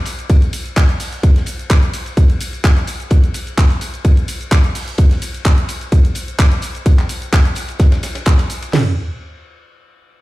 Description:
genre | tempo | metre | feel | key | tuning
house | 128 BPM | 4/4 | swing 54% on 16ths | none | none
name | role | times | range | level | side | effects
house drum kit | drums | 0.1-8.7 s | handclaps, hi-hat, shaker | -24 LUFS | equal | none
warm soul drum kit | drums | 0.1-8.7 s | hi-hat, ride cymbal, snare drum | -31 LUFS | left 3 dB | high-pass filter on cymbals, high-pass filter on hats, high-pass filter on snare, high-pass filter on room
tambourine | percussion | 0.1-8.7 s | none | -37 LUFS | left 4 dB | none
house drum kit | drums | 0.3-8.9 s | crash cymbal, kick drum, snare drum, toms | -12 LUFS | equal | none
room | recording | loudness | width
studio reverb | played on a big sound system in a bare room, large studio reverb | -13 LUFS | side -18 dB against mid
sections
0.0-8.7 A section; 8.7-10.2 B section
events
drop 0.0-8.7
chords
none

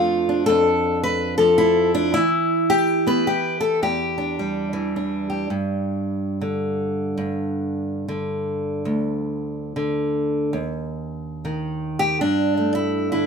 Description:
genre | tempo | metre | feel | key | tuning
folk, solo fingerstyle acoustic guitar | 107 BPM | 3/4 | swing 62% on 8ths | unclear | A4 = 441 Hz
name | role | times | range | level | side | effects
fingerpicked steel-string acoustic guitar | solo | 0.0-13.3 s | D2 to B4 | -20 LUFS | equal | none
room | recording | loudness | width
light reverb | band playing live in one room | -20 LUFS | side -6 dB against mid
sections
0.0-5.5 A section; 5.5-12.2 B section; 12.2-13.3 C section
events
none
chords
0.0 F6; 2.2 Em7; 5.5 G5; 8.9 N.C.; 12.2 Gsus2

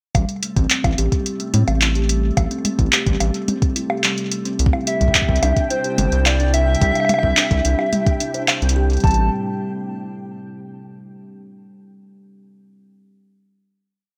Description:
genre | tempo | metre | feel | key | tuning
IDM | 108 BPM | 4/4 | straight | A minor | A4 = 440 Hz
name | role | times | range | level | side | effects
glassy FM pad | sustained chords | 0.4-9.3 s | C3 to E4 | -32 LUFS | equal | ensemble chorus, built-in reverb
kalimba | arpeggios | 0.1-9.3 s | G3 to C5 | -29 LUFS | equal | delay
round analog bass | bass | 0.1-9.3 s | G1 to A2 | -21 LUFS | equal | none
booming analog drum machine | drums | 0.1-9.2 s | bongos, handclaps, hi-hat, toms | -22 LUFS | equal | none
electronic kick drum | drums | 0.1-9.1 s | none | -22 LUFS | equal | none
flickering grainy texture | texture | 5.0-9.0 s | G5 | -36 LUFS | equal | built-in reverb, lush chorus
warbly nostalgic lead | melody | 4.9-9.3 s | C5 to A5 | -24 LUFS | equal | lush chorus, delay
room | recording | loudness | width
moderate plate reverb, RT60 1.2 s | bright 1980s-style digital production | -18 LUFS | mono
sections
0.1-9.0 groove; 9.0-11.3 final chord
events
none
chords
0.1 Am7; 4.6 Cadd9; 9.0 Am7

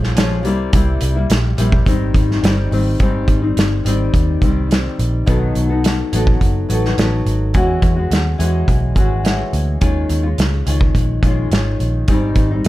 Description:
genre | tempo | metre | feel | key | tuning
indie pop, bedroom pop | 106 BPM | 4/4 | straight | unclear | A4 = 440 Hz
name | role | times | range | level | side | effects
nylon-string guitar | accompaniment | 0.0-12.7 s | Ab2 to A4 | -20 LUFS | left 2 dB | wide subtle chorus, warbly pitch drift
vintage muted picked electric bass | bass | 0.0-12.7 s | F#1 to E2 | -18 LUFS | equal | none
loose indie drum kit | drums | 0.0-12.7 s | hi-hat, kick drum, snare drum | -17 LUFS | equal | none
room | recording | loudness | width
light reverb | dark, warm production | -14 LUFS | side -16 dB against mid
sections
0.0-3.0 A section; 3.0-12.7 B section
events
none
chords
0.5 C7; 1.9 Abmaj7; 5.3 B7; 7.5 E69; 9.8 Eb9sus4; 12.1 Abmaj7

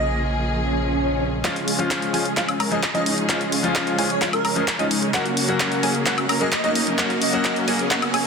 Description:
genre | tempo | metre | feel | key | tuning
EDM, festival progressive house | 130 BPM | 4/4 | straight | Db major | A4 = 442 Hz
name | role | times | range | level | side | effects
airy dreamy lead | melody | 0.0-7.6 s | Bb4 to Eb5 | -29 LUFS | right 2 dB | chorus, dub echo
bright grand piano | accompaniment | 0.0-8.3 s | Bb2 to Ab4 | -26 LUFS | left 4 dB | vintage 12-bit sampler grit, sidechain pumping, dub echo
warm symphonic string section | sustained chords | 0.0-8.3 s | Db3 to Bb4 | -29 LUFS | left 1 dB | sidechain pumping
fat analog bass | bass | 0.0-1.4 s | Bb1 | -26 LUFS | equal | sidechain pumping
swell and riser | sound effects | 0.6-8.3 s | none | -31 LUFS | right 1 dB | none
wide unison pluck | arpeggios | 1.4-8.2 s | Eb5 to Bb5 | -30 LUFS | right 2 dB | sidechain pumping, dub echo
supersaw chords | riff | 1.4-8.2 s | Ab3 to Bb4 | -25 LUFS | right 1 dB | sidechain pumping, low-pass filter, dub echo
big-room dance drum kit | drums | 1.4-8.2 s | handclaps, hi-hat, woodblock | -24 LUFS | left 1 dB | none
electronic kick drum | drums | 1.4-8.0 s | none | -31 LUFS | right 1 dB | high-pass filter on kick
room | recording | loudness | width
moderate huge ambient reverb, RT60 7.0 s | dense, heavily limited modern master | -19 LUFS | side -5 dB against mid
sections
0.0-1.4 A section; 1.4-8.3 B section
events
swell 0.6-1.4; build-up 1.4-8.3; drum fill 1.4-8.3; filter sweep on supersaw synth 1.4-8.3; filter sweep on synth pluck 1.4-8.3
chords
0.0 Bbm; 1.4 Db; 5.1 Gb

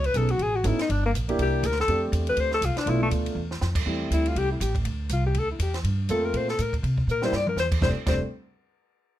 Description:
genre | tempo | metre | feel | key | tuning
jazz, small-group swing and bop | 242 BPM | 4/4 | swing 58% on 8ths | F major | A4 = 439 Hz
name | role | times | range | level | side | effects
warm alto saxophone | melody | 0.0-8.2 s | A3 to D5 | -26 LUFS | left 3 dB | none
upright bass | bass | 0.0-8.2 s | F1 to C3 | -26 LUFS | right 1 dB | none
compact cocktail drum kit | drums | 0.0-8.1 s | crash cymbal, hi-hat, kick drum, ride cymbal, snare drum, toms | -32 LUFS | right 1 dB | none
warm concert grand piano | accompaniment | 0.1-8.2 s | G3 to A4 | -30 LUFS | right 2 dB | none
room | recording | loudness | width
light reverb | none | -23 LUFS | side -13 dB against mid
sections
0.0-3.9 A section; 3.9-7.8 B section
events
drum fill 3.4, 7.1-7.6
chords
0.0 Amaj9#11; 0.9 Gm; 1.4 C9; 1.9 F69; 2.9 Bm7b5; 3.4 N.C.; 3.9 Am7; 4.9 Dsus2; 5.8 Gm11; 6.8 C7; 7.8 F69

